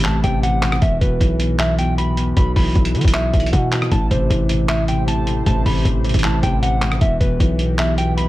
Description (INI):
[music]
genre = hip hop, trap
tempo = 155 BPM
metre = 4/4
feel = half-time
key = E minor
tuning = A4 = 439 Hz
[part]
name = mellow electric guitar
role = melody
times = 0.0-8.3 s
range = B4 to B5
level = -24 LUFS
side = equal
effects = spring reverb
[part]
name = dark baby grand piano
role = accompaniment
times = 0.0-8.3 s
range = E2 to F#3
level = -21 LUFS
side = left 1 dB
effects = none
[part]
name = distorted 808-style bass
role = bass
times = 0.0-8.3 s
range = E1 to D#3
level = -20 LUFS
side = equal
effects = distortion
[part]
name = lo-fi sampler-style drum kit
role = drums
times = 0.0-8.3 s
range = handclaps, hi-hat, kick drum, rim click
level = -19 LUFS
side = equal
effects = none
[part]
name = dark analog pad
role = sustained chords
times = 4.7-8.3 s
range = E3 to C5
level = -30 LUFS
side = right 3 dB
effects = chorus
[sound]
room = digital ambience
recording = none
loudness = -15 LUFS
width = side -17 dB against mid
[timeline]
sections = 0.0-8.3 A section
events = none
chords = 0.0 Am; 0.8 E5; 2.4 Bsus4; 3.9 Am; 7.0 Em